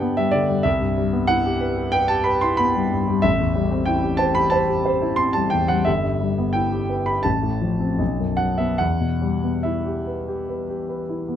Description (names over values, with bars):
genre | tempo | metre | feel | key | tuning
classical, romantic character piece for solo piano | 70-96 BPM | 4/4 | rubato | E minor | A4 = 440 Hz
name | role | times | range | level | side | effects
warm grand piano | solo | 0.0-11.4 s | G1 to C6 | -19 LUFS | equal | none
room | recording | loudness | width
little or no reverb | close, detailed microphones | -19 LUFS | side -9 dB against mid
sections
0.0-11.4 A section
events
none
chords
0.0 G; 0.6 Cmaj7; 3.2 Am7; 5.9 Em/G; 7.3 F/A; 8.0 B5; 8.8 Em